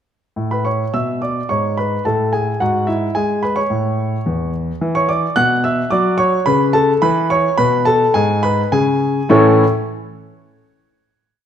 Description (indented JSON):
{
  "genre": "classical-period piano sonatina",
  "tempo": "108 BPM",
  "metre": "4/4",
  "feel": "straight",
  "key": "A major",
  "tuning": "A4 = 439 Hz",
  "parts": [
    { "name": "clear concert grand piano", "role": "solo", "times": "0.4-9.6 s", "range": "E2 to F#6", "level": "-14 LUFS", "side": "equal", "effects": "none" }
  ],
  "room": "moderate recital hall reverb, RT60 1.4 s",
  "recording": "none",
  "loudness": "-14 LUFS",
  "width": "side -9 dB against mid",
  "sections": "0.4-9.3 A section; 9.3-11.5 final chord",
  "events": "none",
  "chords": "0.4 A; 2.6 E/G#; 3.7 A; 4.8 E5; 5.9 F#m; 7.0 E; 9.3 A"
}